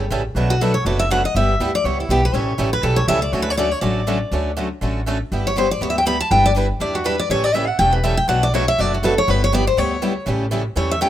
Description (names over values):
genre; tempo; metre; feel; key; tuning
acoustic string swing (jazz manouche); 242 BPM; 4/4; swing 56% on 8ths; D major; A4 = 440 Hz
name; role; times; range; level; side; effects
picked steel-string acoustic guitar; accompaniment; 0.0-11.1 s; B2 to B4; -26 LUFS; left 4 dB; none
picked swing-style acoustic guitar; accompaniment; 0.0-11.1 s; B2 to B4; -25 LUFS; right 5 dB; none
upright bass; bass; 0.0-11.1 s; E1 to E2; -22 LUFS; equal; none
picked steel-string acoustic guitar; melody; 0.5-11.1 s; E4 to B5; -19 LUFS; left 1 dB; slapback echo
room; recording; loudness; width
small room ambience; rough home demo mix; -16 LUFS; side -12 dB against mid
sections
0.0-4.3 A section; 4.3-11.1 A section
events
steel-string acoustic guitar solo 0.0-11.1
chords
0.4 Bm7; 1.3 G6; 2.3 A7; 3.3 Dmaj7; 5.3 G6; 7.3 A7; 8.3 Bm7; 9.3 G6; 10.3 A7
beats
0.11 | 0.36 0.61 0.85 1.10 | 1.35 1.60 1.84 2.09 | 2.34 2.59 2.83 3.08 | 3.33 3.58 3.83 4.07 | 4.32 4.57 4.82 5.06 | 5.31 5.56 5.81 6.05 | 6.30 6.55 6.80 7.05 | 7.29 7.54 7.79 8.04 | 8.29 8.53 8.78 9.03 | 9.28 9.52 9.77 10.02 | 10.27 10.51 10.76 11.01